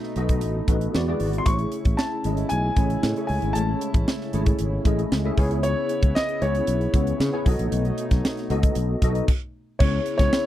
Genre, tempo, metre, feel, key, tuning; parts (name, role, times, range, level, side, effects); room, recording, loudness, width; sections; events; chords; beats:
polished 1980s jazz-funk pop; 115 BPM; 4/4; straight; C# minor; A4 = 440 Hz
warm grand piano; melody; 0.0-10.5 s; C#5 to C#6; -28 LUFS; left 2 dB; slapback echo
tine electric piano; accompaniment; 0.0-10.5 s; G#3 to E5; -28 LUFS; left 1 dB; ensemble chorus
warm analog pad; sustained chords; 0.0-10.5 s; B2 to F#4; -34 LUFS; right 2 dB; chorus
tight funk drum kit; drums; 0.0-10.4 s; crash cymbal, hi-hat, kick drum, snare drum; -22 LUFS; equal
fretless electric bass; bass; 0.2-10.3 s; G#1 to C#3; -25 LUFS; equal
little or no reverb; dry, close 1970s-style studio recording; -20 LUFS; side -13 dB against mid
0.0-9.8 A section
stop 9.3-9.8
0.0 B7; 0.9 E9; 1.5 Amaj7; 5.4 C#m7; 7.5 B7; 9.3 N.C.; 9.8 C#m7
0.42 0.95 | 1.47 1.99 2.51 3.03 | 3.55 4.07 4.59 5.12 | 5.64 6.16 6.68 7.20 | 7.72 8.24 8.76 9.29 | 9.81 10.33